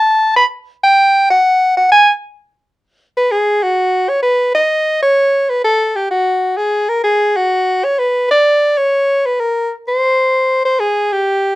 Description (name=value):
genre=jazz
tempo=128 BPM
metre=4/4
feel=swing 68% on 8ths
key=unclear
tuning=A4 = 440 Hz
part: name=warm soprano saxophone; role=solo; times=0.0-11.6 s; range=F#4 to Cb6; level=-11 LUFS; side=equal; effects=none
room=light reverb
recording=close, detailed microphones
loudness=-11 LUFS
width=side -17 dB against mid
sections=0.0-3.8 A section; 3.8-11.6 B section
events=soprano saxophone solo 0.0-3.8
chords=none